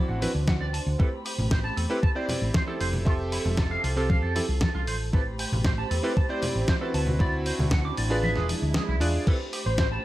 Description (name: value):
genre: nu-disco, nu disco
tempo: 116 BPM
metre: 4/4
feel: straight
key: A minor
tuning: A4 = 439 Hz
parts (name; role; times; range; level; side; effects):
- bright electric grand piano; accompaniment; 0.0-9.4 s; C4 to B5; -31 LUFS; right 1 dB; vintage 12-bit sampler grit, sidechain pumping, tape echo
- dark studio string section; sustained chords; 0.0-10.0 s; F3 to B5; -35 LUFS; right 2 dB; sidechain pumping
- electric guitar with an envelope filter; riff; 0.0-10.0 s; E4 to D6; -34 LUFS; right 3 dB; lush chorus, tape echo
- hollow-body short-scale fingered electric bass; bass; 0.1-10.0 s; E1 to F2; -28 LUFS; equal; sidechain pumping
- dusty soul sampler-style drum kit; drums; 0.2-9.9 s; crash cymbal, hi-hat, snare drum; -33 LUFS; equal; none
- congas; percussion; 0.2-8.9 s; none; -34 LUFS; left 1 dB; none
- electronic kick drum; drums; 0.5-9.9 s; none; -24 LUFS; equal; none
- wide unison lead; melody; 9.7-9.9 s; C5; -32 LUFS; left 4 dB; ensemble chorus
room: light reverb, digital ambience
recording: none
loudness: -23 LUFS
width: side -15 dB against mid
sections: 0.0-9.3 A section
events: kick drops out 8.2-9.3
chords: 0.0 D13; 1.0 Am9; 2.8 Fmaj9; 5.1 Am9; 6.9 D13; 8.2 E7b9; 9.3 Am9